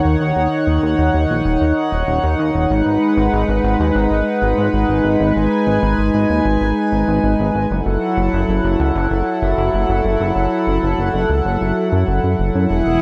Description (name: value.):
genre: synthwave.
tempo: 96 BPM.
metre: 4/4.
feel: straight.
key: unclear.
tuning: A4 = 440 Hz.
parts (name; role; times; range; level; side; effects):
chorused pulse-width pad; sustained chords; 0.0-13.0 s; D#3 to G#5; -19 LUFS; equal; none.
chorused synth bass; bass; 0.0-13.0 s; D#1 to F#2; -21 LUFS; equal; none.
room: light reverb.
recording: dark, warm production.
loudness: -17 LUFS.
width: mono.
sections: 0.0-12.7 A section.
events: none.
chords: 0.0 D#m7; 2.7 G#m7; 7.7 F#m7.